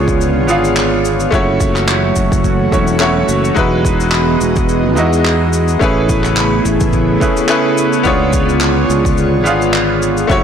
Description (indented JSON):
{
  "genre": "sunset chillout",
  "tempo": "107 BPM",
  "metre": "4/4",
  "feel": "swing 56% on 16ths",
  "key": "unclear",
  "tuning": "A4 = 440 Hz",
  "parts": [
    { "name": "bright concert grand piano", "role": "accompaniment", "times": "0.0-10.4 s", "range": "G#3 to E#5", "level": "-16 LUFS", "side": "equal", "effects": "auto-pan, digital delay" },
    { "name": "airy breathy pad", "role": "sustained chords", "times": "0.0-10.4 s", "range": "C#3 to D#5", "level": "-16 LUFS", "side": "right 1 dB", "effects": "chorus" },
    { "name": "sustaining fretless electric bass", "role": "bass", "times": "0.0-10.4 s", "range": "E1 to E2", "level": "-17 LUFS", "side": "equal", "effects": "transformer saturation" },
    { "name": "cabasa and handclaps", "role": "drums", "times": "0.1-10.4 s", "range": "none", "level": "-21 LUFS", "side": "equal", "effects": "none" },
    { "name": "electronic kick drum", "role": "drums", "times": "0.1-10.4 s", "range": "none", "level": "-18 LUFS", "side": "equal", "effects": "overdrive" }
  ],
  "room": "moderate plate reverb, RT60 2.0 s",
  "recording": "blown-out, overdriven recording, overdrive",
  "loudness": "-11 LUFS",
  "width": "side -8 dB against mid",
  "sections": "0.0-10.4 A section",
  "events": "none",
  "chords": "0.0 C#7b9; 1.3 F#m7; 3.6 Emaj9; 5.8 Amaj9; 8.1 C#7b9",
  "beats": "0.20 0.76 | 1.32 1.89 2.45 3.01 | 3.57 4.13 4.69 5.25 | 5.81 6.37 6.93 7.49 | 8.05 8.62 9.18 9.74 | 10.30"
}